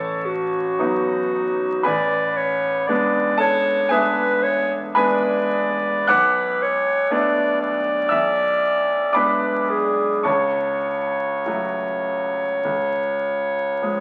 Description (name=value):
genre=classical, romantic duo for clarinet and grand piano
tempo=50-61 BPM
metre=4/4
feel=rubato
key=F# minor from 6.1 s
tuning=A4 = 441 Hz
part: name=warm clarinet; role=melody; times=0.0-14.0 s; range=F#4 to D5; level=-23 LUFS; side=equal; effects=none
part: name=bright grand piano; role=accompaniment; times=0.0-14.0 s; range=A1 to F#6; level=-24 LUFS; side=equal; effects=none
room=wet large studio reverb, RT60 0.9 s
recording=very old 78 rpm record, vinyl crackle, nothing above 11.0 kHz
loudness=-21 LUFS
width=mono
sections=0.0-14.0 A section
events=none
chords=0.0 B7/A; 1.9 E7/A; 6.1 Bm7; 8.1 G#dim/B; 10.3 F#m/C#; 12.6 C#